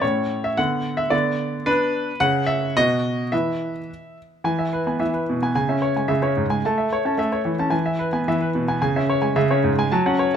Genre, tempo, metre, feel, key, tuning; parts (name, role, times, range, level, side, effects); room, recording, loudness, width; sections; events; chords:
classical-period piano sonatina; 110 BPM; 2/4; straight; E major; A4 = 440 Hz
clear baby grand piano; solo; 0.0-10.4 s; G#2 to A5; -19 LUFS; equal
light reverb; close, detailed microphones; -19 LUFS; side -8 dB against mid
0.0-4.5 A section; 4.5-10.4 B section
0.0 A; 0.6 Bm/D; 2.2 N.C.; 2.8 B; 3.3 E5; 4.5 E; 5.6 C#m; 6.6 A; 7.7 E; 8.8 C#m